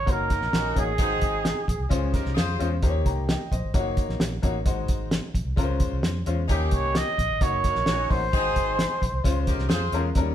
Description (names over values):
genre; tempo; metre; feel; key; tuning
uptempo 1960s-style soul; 131 BPM; 4/4; straight; unclear; A4 = 440 Hz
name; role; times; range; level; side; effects
breathy trumpet; melody; 0.0-2.1, 6.7-9.5 s; Ab4 to Eb5; -26 LUFS; right 2 dB; none
vintage muted fingered electric bass; bass; 0.0-10.3 s; Gb1 to F2; -28 LUFS; equal; none
clear upright piano; accompaniment; 0.1-10.3 s; Gb3 to Bb5; -30 LUFS; left 5 dB; tube saturation
cloth-damped thuddy drum kit; drums; 0.1-10.3 s; hi-hat, kick drum, snare drum; -26 LUFS; equal; none
mellow horn section; second line; 0.3-2.7, 6.5-10.0 s; C4 to C5; -31 LUFS; left 1 dB; none
room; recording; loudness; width
moderate stone room reverb, RT60 1.0 s; band playing live in one room; -22 LUFS; side -10 dB against mid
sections
0.0-10.3 A section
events
none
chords
0.1 Gb6; 1.0 Ab7; 1.9 Dbmaj7; 2.8 Eb7; 3.7 Gb6; 4.7 Ab7; 5.6 Dbmaj7; 6.5 Eb7; 7.4 Gb6; 8.3 Ab7; 9.2 Dbmaj7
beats
0.08 0.54 | 1.00 1.46 1.91 2.37 | 2.83 3.29 3.74 4.20 | 4.66 5.12 5.58 6.03 | 6.49 6.95 7.41 7.87 | 8.32 8.78 9.24 9.70 | 10.15